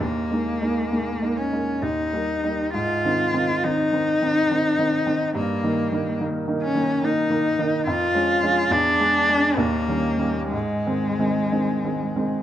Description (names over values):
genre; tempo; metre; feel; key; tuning
classical, romantic duo for cello and grand piano; 59-73 BPM; 3/4; rubato; Ab major; A4 = 440 Hz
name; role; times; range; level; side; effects
rich cello; melody; 0.0-12.4 s; Ab3 to F4; -22 LUFS; left 1 dB; none
clear baby grand piano; accompaniment; 0.0-12.4 s; Eb2 to Eb4; -24 LUFS; right 1 dB; none
room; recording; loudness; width
moderate scoring stage reverb, RT60 1.6 s; close, detailed microphones; -20 LUFS; side -11 dB against mid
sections
0.0-12.4 A section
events
none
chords
0.0 Ebsus4; 1.8 Eb; 2.7 Ab; 5.4 Eb/G; 7.9 Db/F; 8.7 E7; 9.6 Eb7; 10.5 Ab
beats
| 0.01 0.92 1.83 | 2.74 3.64 4.51 | 5.36 6.21 7.03 | 7.86 8.71 9.58 | 10.53 11.53